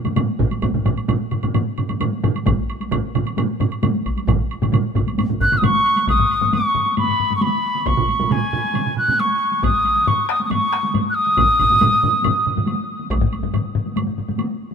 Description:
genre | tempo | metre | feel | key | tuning
japanese traditional, taiko drum ensemble | 135 BPM | 4/4 | straight | C# suspended pentatonic | A4 = 439 Hz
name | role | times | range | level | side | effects
taiko ensemble | percussion | 0.0-14.7 s | none | -25 LUFS | equal | none
woodblock | percussion | 0.0-14.5 s | none | -33 LUFS | right 5 dB | none
taiko ensemble | percussion | 0.1-14.4 s | none | -24 LUFS | left 5 dB | none
taiko ensemble | percussion | 0.1-12.7 s | none | -22 LUFS | right 8 dB | none
taiko ensemble | percussion | 0.4-13.2 s | none | -24 LUFS | equal | none
wooden piccolo | melody | 5.4-12.5 s | G#5 to F#6 | -17 LUFS | equal | none
room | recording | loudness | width
moderate huge ambient reverb, RT60 4.3 s | minimal, uncompressed stereo recording | -16 LUFS | side -7 dB against mid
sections
0.0-6.1 A section; 6.1-14.7 B section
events
speeding up 0.0-14.7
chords
none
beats
0.17 | 0.63 1.09 1.55 2.01 | 2.46 2.92 3.38 3.83 | 4.28 4.73 5.18 5.63 | 6.08 6.53 6.97 7.42 | 7.86 8.30 8.75 9.19 | 9.63 10.07 10.50 10.94 | 11.38 11.81 12.24 12.68 | 13.11 13.54 13.96 14.39

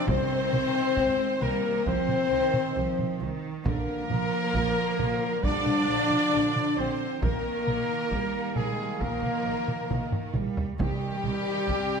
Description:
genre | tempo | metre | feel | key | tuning
cinematic, epic orchestral film score | 67 BPM | 4/4 | straight | unclear | A4 = 444 Hz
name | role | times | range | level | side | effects
rich symphonic violin section | melody | 0.0-12.0 s | G4 to D5 | -37 LUFS | left 4 dB | none
rich symphonic violin section | second line | 0.0-12.0 s | G4 to D5 | -34 LUFS | left 4 dB | none
rich symphonic viola section | accompaniment | 0.0-12.0 s | G3 to D4 | -34 LUFS | right 1 dB | none
mellow French horn section | sustained chords | 0.0-12.0 s | G3 to D4 | -30 LUFS | left 5 dB | none
mellow trombone section | sustained chords | 0.0-12.0 s | C3 to C4 | -39 LUFS | right 3 dB | none
warm trumpet | stabs | 0.0-12.0 s | G4 to D5 | -33 LUFS | right 3 dB | none
rich symphonic cello section | bass | 0.0-12.0 s | C3 to Ab3 | -34 LUFS | right 6 dB | none
rich symphonic double bass section | bass | 0.1-11.8 s | Bb1 to C2 | -37 LUFS | right 5 dB | none
taiko ensemble | drums | 0.1-12.0 s | none | -32 LUFS | right 1 dB | none
timpani | percussion | 0.1-1.4, 10.8-12.0 s | C3 | -35 LUFS | right 3 dB | none
room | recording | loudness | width
moderate scoring stage reverb, RT60 1.6 s | none | -24 LUFS | side -6 dB against mid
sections
0.0-12.0 A section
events
drum fill 9.9-10.8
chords
0.1 Ab/C; 3.6 Bb; 7.2 Eb/Bb; 10.8 Cm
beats
| 0.08 0.97 1.86 2.75 | 3.65 4.54 5.43 6.33 | 7.22 8.11 9.01 9.90 | 10.79 11.69

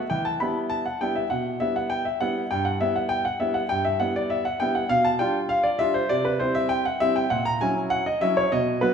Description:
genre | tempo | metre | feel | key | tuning
classical-period piano sonatina | 100 BPM | 4/4 | rubato | E minor | A4 = 437 Hz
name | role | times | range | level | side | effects
clear grand piano | solo | 0.0-8.9 s | G2 to B5 | -22 LUFS | equal | none
room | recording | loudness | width
wet recital hall reverb, RT60 1.7 s | minimal, uncompressed stereo recording | -22 LUFS | side -7 dB against mid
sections
0.0-8.9 A section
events
none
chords
0.1 Em; 2.5 Em/G; 4.9 G7/B; 6.1 C; 7.3 F#7/A#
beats
| 0.10 0.70 1.30 1.90 | 2.50 3.10 3.69 4.30 | 4.89 5.49 6.09 6.69 | 7.30 7.91 8.52

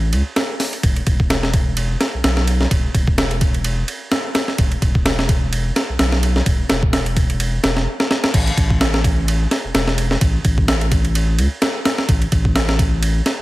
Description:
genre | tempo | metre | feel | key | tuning
breakbeat, breaks | 128 BPM | 4/4 | swing 55% on 16ths | unclear | A4 = 442 Hz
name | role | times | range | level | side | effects
saturated sub bass | bass | 0.0-13.4 s | E1 to C#2 | -19 LUFS | equal | none
breakbeat sampler-style drum kit | drums | 0.1-13.4 s | crash cymbal, hi-hat, kick drum, ride cymbal, snare drum | -17 LUFS | equal | none
room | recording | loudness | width
light reverb | heavily compressed radio sound | -15 LUFS | side -18 dB against mid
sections
0.0-8.3 A section; 8.3-13.4 B section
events
drum fill 8.0-8.3; drop 8.3-13.4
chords
none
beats
0.37 | 0.84 1.30 1.77 2.24 | 2.71 3.18 3.65 4.12 | 4.59 5.05 5.52 5.99 | 6.46 6.93 7.40 7.87 | 8.34 8.80 9.27 9.74 | 10.21 10.68 11.15 11.62 | 12.09 12.55 13.02

